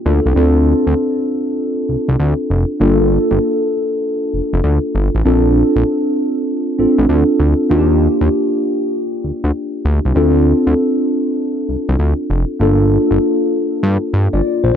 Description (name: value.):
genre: R&B, new jack swing.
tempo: 98 BPM.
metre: 4/4.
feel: swing 65% on 16ths.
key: unclear.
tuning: A4 = 440 Hz.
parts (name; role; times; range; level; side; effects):
mellow tine electric piano; accompaniment; 0.0-14.8 s; Bb3 to D5; -15 LUFS; equal; lush chorus.
fat analog bass; bass; 0.1-14.7 s; F1 to G2; -14 LUFS; equal; none.
room: wet lush hall reverb, RT60 2.3 s.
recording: dreamy mix soaked in reverb.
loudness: -13 LUFS.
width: side -8 dB against mid.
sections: 0.0-14.8 A section.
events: none.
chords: 0.4 Dm7; 2.8 Gm7; 5.3 Bbmaj7; 7.7 Ebmaj9; 10.2 Dm7; 12.6 Gm7.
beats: | 0.35 0.97 1.58 2.19 | 2.80 3.42 4.03 4.64 | 5.25 5.87 6.48 7.09 | 7.70 8.31 8.93 9.54 | 10.15 10.76 11.38 11.99 | 12.60 13.21 13.82 14.44.